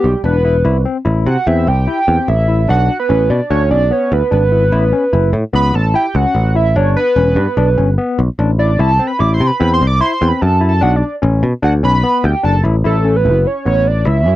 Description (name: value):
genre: progressive instrumental, progressive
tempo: 148 BPM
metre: 5/4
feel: straight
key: A mixolydian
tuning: A4 = 439 Hz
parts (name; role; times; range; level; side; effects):
- hollow square lead; melody; 0.0-14.4 s; G4 to D6; -15 LUFS; right 2 dB; chorus
- barky tine electric piano; arpeggios; 0.0-14.4 s; B3 to E4; -20 LUFS; left 4 dB; medium stereo tremolo
- picked electric bass; bass; 0.0-14.4 s; E1 to C3; -13 LUFS; equal; none
room: little or no reverb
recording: dry, close 1970s-style studio recording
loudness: -11 LUFS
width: side -15 dB against mid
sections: 0.0-12.8 A section; 12.8-14.4 B section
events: analog synth lead solo 0.0-12.8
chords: 0.0 G; 0.7 C; 2.7 Bm; 4.7 Aadd9; 6.8 G; 8.8 C; 10.8 Bm7; 12.8 Aadd9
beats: 0.24 | 0.65 1.06 1.47 1.87 2.28 | 2.69 3.10 3.50 3.91 4.32 | 4.73 5.13 5.54 5.95 6.35 | 6.76 7.17 7.57 7.98 8.39 | 8.79 9.20 9.60 10.01 10.41 | 10.82 11.22 11.63 12.03 12.44 | 12.84 13.25 13.65 14.06